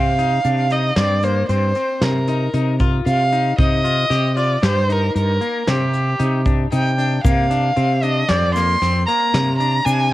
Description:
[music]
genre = progressive instrumental, band music in an uneven meter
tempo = 115 BPM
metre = 7/4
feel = straight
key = C minor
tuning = A4 = 443 Hz
[part]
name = dark violin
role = melody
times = 0.0-10.1 s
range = G4 to C6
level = -20 LUFS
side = right 1 dB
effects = tape echo
[part]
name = semi-hollow electric guitar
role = arpeggios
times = 0.0-10.1 s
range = Bb3 to G4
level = -26 LUFS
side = left 8 dB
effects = harmonic tremolo, cassette tape, tape echo
[part]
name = mellow fretless electric bass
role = bass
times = 0.0-10.1 s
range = F2 to C3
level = -19 LUFS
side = equal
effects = none
[part]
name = soft brush drum kit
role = drums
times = 0.2-10.0 s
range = hi-hat, kick drum, snare drum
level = -21 LUFS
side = equal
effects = cassette tape
[part]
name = tube shaker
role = percussion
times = 7.3-10.1 s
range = none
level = -38 LUFS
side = right 12 dB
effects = none
[sound]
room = light reverb, small room ambience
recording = home recording on cassette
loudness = -15 LUFS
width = side -16 dB against mid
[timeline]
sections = 0.0-10.1 A section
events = none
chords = 0.0 Cm7; 7.2 Bb

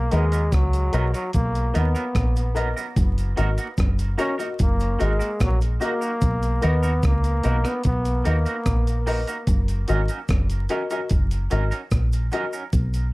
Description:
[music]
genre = roots reggae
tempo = 74 BPM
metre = 4/4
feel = straight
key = F# major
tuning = A4 = 439 Hz
[part]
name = bright trombone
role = melody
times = 0.0-9.1 s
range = F#3 to C#4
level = -28 LUFS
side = equal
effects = dub echo
[part]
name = deep dub fingered electric bass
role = bass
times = 0.0-13.1 s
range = F#1 to D#2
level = -21 LUFS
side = equal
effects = none
[part]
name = clean electric guitar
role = accompaniment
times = 0.1-12.6 s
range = F#3 to A#4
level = -32 LUFS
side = right 4 dB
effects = tremolo, dub echo
[part]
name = warm upright piano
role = stabs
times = 0.1-12.5 s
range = F#4 to D#5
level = -28 LUFS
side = left 3 dB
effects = none
[part]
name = breakbeat sampler-style drum kit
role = drums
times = 0.1-13.1 s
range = hi-hat, kick drum, rim click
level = -24 LUFS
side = equal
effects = none
[part]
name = cabasa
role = percussion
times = 0.1-13.1 s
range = none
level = -46 LUFS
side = right 3 dB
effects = none
[sound]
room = little or no reverb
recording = dark, warm production, vinyl crackle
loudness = -20 LUFS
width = side -22 dB against mid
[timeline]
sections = 0.0-13.1 A section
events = none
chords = 0.0 Bmaj7; 3.0 F#6; 6.2 Bmaj7; 9.5 F#6

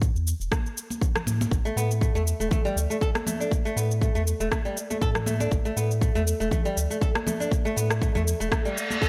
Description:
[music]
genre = afro house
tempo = 120 BPM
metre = 4/4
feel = swing 54% on 16ths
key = unclear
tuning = A4 = 439 Hz
[part]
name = round analog bass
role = bass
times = 0.0-8.5 s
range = E1 to A2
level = -29 LUFS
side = equal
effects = sidechain pumping
[part]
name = electronic kick drum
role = drums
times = 0.0-9.1 s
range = none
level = -28 LUFS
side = equal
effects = none
[part]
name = electronic shaker and rim click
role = drums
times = 0.0-9.1 s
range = none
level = -34 LUFS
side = equal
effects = none
[part]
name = congas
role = percussion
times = 0.5-9.0 s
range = none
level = -37 LUFS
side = equal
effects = none
[part]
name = flamenco guitar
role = arpeggios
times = 1.7-9.1 s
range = G3 to A4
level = -31 LUFS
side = equal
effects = sidechain pumping, tape echo
[part]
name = reverse cymbal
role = sound effects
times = 8.7-9.1 s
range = none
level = -30 LUFS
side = equal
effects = none
[sound]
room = little or no reverb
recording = none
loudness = -26 LUFS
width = mono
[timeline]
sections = 0.0-9.1 A section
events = reverse cymbal 8.7-9.1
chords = 0.0 A5; 1.5 N.C.

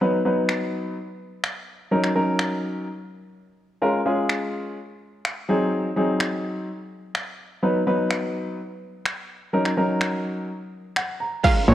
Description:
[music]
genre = dance-pop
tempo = 126 BPM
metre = 4/4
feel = straight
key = Eb minor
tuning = A4 = 440 Hz
[part]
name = warm baby grand piano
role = accompaniment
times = 0.0-11.7 s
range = F#3 to Bb5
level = -23 LUFS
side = equal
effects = sidechain pumping
[part]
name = deep house drum kit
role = drums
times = 0.5-11.5 s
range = crash cymbal, finger snaps, kick drum, snare drum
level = -26 LUFS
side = equal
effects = none
[part]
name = glassy wavetable pluck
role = melody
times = 11.4-11.7 s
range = Db5 to F5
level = -21 LUFS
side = right 3 dB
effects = chorus
[part]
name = direct-recorded clean electric guitar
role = riff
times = 11.4-11.7 s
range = Ab3 to F4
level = -26 LUFS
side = right 6 dB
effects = lush chorus
[part]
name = riser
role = sound effects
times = 11.4-11.7 s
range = none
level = barely audible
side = none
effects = none
[part]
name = fat analog bass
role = bass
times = 11.7 s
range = Bb1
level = -13 LUFS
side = equal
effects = sidechain pumping
[sound]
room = moderate concert hall reverb, RT60 1.9 s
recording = worn, warbling old tape, cassette tape, warbly pitch drift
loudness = -22 LUFS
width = side -12 dB against mid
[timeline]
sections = 0.0-11.4 A section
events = break 3.3-3.8; grand piano fill 10.7-11.4; drum fill 11.4-11.7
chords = 0.0 B; 1.9 Ebm7; 3.8 Bbm7 (rootless); 5.5 Ab7; 7.6 B; 9.5 Ebm7

